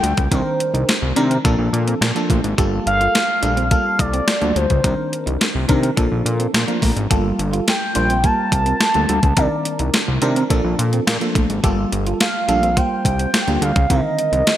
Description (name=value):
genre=early-eighties boogie funk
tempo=106 BPM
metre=4/4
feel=straight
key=G minor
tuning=A4 = 440 Hz
part: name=expressive portamento lead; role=melody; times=0.0-14.6 s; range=C5 to A5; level=-20 LUFS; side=right 1 dB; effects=chorus
part: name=FM electric piano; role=accompaniment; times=0.0-14.5 s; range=D3 to C5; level=-23 LUFS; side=equal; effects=chorus, phaser
part: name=electric guitar at the edge of break-up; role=riff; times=0.0-14.5 s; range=G3 to G4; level=-27 LUFS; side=right 5 dB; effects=lush chorus
part: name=fat analog bass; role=bass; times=0.0-14.4 s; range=G1 to C3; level=-20 LUFS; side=equal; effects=none
part: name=clean 12-bit digital drum machine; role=drums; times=0.0-14.6 s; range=hi-hat, kick drum, snare drum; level=-20 LUFS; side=equal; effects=overdrive, gated reverb
room=moderate plate reverb, RT60 2.5 s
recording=bright 1980s-style digital production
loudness=-15 LUFS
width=side -12 dB against mid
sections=0.0-14.6 A section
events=none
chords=0.3 Cm9; 1.4 Bbmaj7; 2.6 Gm9; 4.8 Cm9; 6.0 Bbmaj7; 7.1 Gm9; 9.4 Cm9; 10.5 Bbmaj7; 11.6 Gm9; 13.9 Cm9